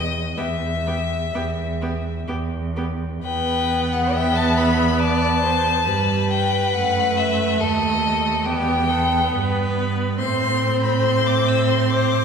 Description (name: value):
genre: classical, slow romantic movement for string quartet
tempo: 61-71 BPM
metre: 4/4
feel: rubato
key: E minor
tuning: A4 = 440 Hz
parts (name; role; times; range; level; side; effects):
- clear violin; melody; 0.0-12.2 s; D#5 to E6; -23 LUFS; left 5 dB; none
- clear cello; bass; 0.0-12.2 s; D#2 to A2; -24 LUFS; right 3 dB; none
- clear violin; second line; 0.4-12.2 s; G4 to E5; -25 LUFS; left 2 dB; none
- clear viola; accompaniment; 0.4-12.2 s; G3 to C4; -25 LUFS; right 4 dB; none
room: wet concert hall reverb, RT60 2.0 s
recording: recorded in a church or concert hall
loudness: -18 LUFS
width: side -6 dB against mid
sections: 0.0-3.2 A section; 3.2-12.2 B section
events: none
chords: 0.0 E5; 3.2 Em; 6.7 D#dim/F#; 8.4 Em; 10.2 Am